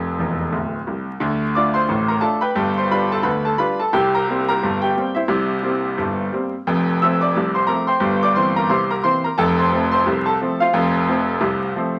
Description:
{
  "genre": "ragtime piano",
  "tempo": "88 BPM",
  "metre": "2/4",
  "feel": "swing 58% on 16ths",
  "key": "F major",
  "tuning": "A4 = 439 Hz",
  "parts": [
    { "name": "bright grand piano", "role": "solo", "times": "0.0-12.0 s", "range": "D1 to E6", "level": "-19 LUFS", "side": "equal", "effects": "none" }
  ],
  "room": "wet studio reverb, RT60 0.9 s",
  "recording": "vinyl crackle",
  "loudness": "-19 LUFS",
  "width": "mono",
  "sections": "0.0-1.2 A section; 1.2-12.0 B section",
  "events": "grand piano fill 0.2-1.2",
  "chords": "0.0 F; 1.2 Dm; 2.6 G7; 3.9 C7; 6.7 F; 8.0 C7/G; 9.4 F",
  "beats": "0.52 | 1.21 1.89 | 2.57 3.25 | 3.94 4.62 | 5.30 5.98 | 6.66 7.34 | 8.02 8.70 | 9.38 10.06 | 10.74 11.42"
}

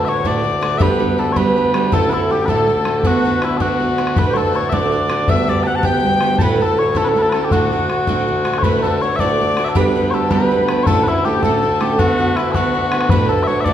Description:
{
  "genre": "celtic folk, Celtic jig",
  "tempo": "107 BPM (dotted quarters)",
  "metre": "6/8",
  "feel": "straight",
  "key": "D major",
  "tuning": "A4 = 440 Hz",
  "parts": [
    { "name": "mellow small bagpipes", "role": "melody", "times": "0.0-13.7 s", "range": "D2 to A5", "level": "-18 LUFS", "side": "left 2 dB", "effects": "none" },
    { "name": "accordion", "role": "second line", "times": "0.0-13.7 s", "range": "E4 to G5", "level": "-27 LUFS", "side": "left 3 dB", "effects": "none" },
    { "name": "hammered dulcimer", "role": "second line", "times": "0.0-13.7 s", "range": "E4 to G5", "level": "-26 LUFS", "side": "right 3 dB", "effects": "none" },
    { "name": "picked steel-string acoustic guitar", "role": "accompaniment", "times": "0.0-13.7 s", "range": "D2 to B4", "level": "-18 LUFS", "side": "right 3 dB", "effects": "none" },
    { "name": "bodhran", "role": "percussion", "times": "0.2-13.7 s", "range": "none", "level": "-22 LUFS", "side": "left 2 dB", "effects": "none" }
  ],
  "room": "wet recital hall reverb, RT60 1.6 s",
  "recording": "recorded in a church or concert hall",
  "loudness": "-14 LUFS",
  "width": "side -10 dB against mid",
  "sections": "0.0-8.6 A section; 8.6-13.7 A section",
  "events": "none",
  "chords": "0.0 D; 0.8 G; 1.9 A; 3.0 Bm; 4.2 D; 5.3 G; 6.4 A; 7.5 D; 9.8 G; 10.9 A; 12.0 Bm; 13.1 D",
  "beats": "0.24 | 0.80 1.36 | 1.92 2.48 | 3.04 3.60 | 4.16 4.72 | 5.28 5.84 | 6.40 6.96 | 7.51 8.07 | 8.63 9.19 | 9.75 10.31 | 10.87 11.43 | 11.99 12.54 | 13.10 13.66"
}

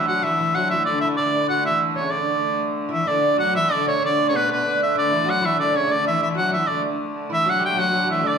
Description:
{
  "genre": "medieval dance",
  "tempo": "128 BPM (dotted quarters)",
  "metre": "6/8",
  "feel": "straight",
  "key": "D major",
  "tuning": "A4 = 440 Hz",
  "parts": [
    { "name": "bright shawm", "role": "melody", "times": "0.0-8.4 s", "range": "B4 to G5", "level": "-20 LUFS", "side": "right 1 dB", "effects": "none" },
    { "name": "dark viola da gamba", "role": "second line", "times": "0.0-8.4 s", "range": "B2 to G3", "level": "-27 LUFS", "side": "left 5 dB", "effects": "none" },
    { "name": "lute", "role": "second line", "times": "0.0-8.4 s", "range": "B3 to G4", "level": "-26 LUFS", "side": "right 4 dB", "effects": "none" },
    { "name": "rich hurdy-gurdy", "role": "drone", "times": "0.0-8.4 s", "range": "D3 to A3", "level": "-29 LUFS", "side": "left 1 dB", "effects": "none" }
  ],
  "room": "wet large studio reverb, RT60 1.4 s",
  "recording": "band playing live in one room",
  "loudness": "-18 LUFS",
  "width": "side -6 dB against mid",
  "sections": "0.0-3.1 A section; 3.1-8.4 A section",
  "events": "none",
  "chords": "none",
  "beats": "| 0.25 0.72 | 1.19 1.66 | 2.13 2.60 | 3.07 3.54 | 4.01 4.48 | 4.95 5.42 | 5.89 6.36 | 6.82 7.29 | 7.76 8.23"
}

